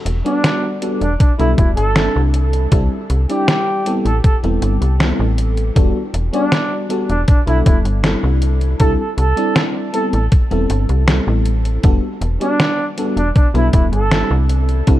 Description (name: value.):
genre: vaporwave.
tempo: 79 BPM.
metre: 4/4.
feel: straight.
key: E minor.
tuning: A4 = 440 Hz.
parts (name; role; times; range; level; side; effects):
slap-like FM bass; bass; 0.1-15.0 s; D1 to C2; -16 LUFS; equal; none.
detuned 8-bit digital drum machine; drums; 0.1-15.0 s; hi-hat, snare drum; -20 LUFS; equal; gated reverb.
warm flugelhorn; melody; 0.2-14.4 s; D4 to A4; -22 LUFS; right 2 dB; tape echo.
FM electric piano with soft pad layer; accompaniment; 0.2-15.0 s; G3 to D5; -21 LUFS; left 1 dB; tremolo, lush chorus, tape echo.
electronic kick drum; drums; 1.2-15.0 s; none; -13 LUFS; equal; none.
room: little or no reverb.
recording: cassette tape.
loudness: -13 LUFS.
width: side -14 dB against mid.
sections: 0.0-15.0 A section.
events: none.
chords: 0.0 Em11; 2.3 C69; 3.9 Am9; 5.8 Em11; 8.4 C69; 9.9 Am9; 11.8 Em11; 14.5 C69.